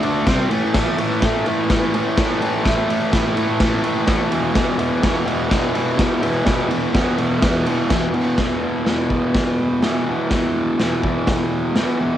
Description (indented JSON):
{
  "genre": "garage rock duo or trio",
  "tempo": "126 BPM",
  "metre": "4/4",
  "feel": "straight",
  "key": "unclear",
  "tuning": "A4 = 440 Hz",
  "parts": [
    { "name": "fuzz guitar", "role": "riff", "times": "0.0-12.2 s", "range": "E2 to D4", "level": "-18 LUFS", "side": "equal", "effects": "distortion, cassette tape" },
    { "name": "raw garage drum kit", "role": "drums", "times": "0.0-11.9 s", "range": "crash cymbal, hi-hat, kick drum, ride cymbal, snare drum", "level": "-21 LUFS", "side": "equal", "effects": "none" }
  ],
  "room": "light reverb",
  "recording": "home recording on cassette",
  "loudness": "-16 LUFS",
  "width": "side -11 dB against mid",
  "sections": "0.0-8.4 A section; 8.4-12.2 B section",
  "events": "none",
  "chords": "0.3 C5; 0.5 A5; 4.3 E5"
}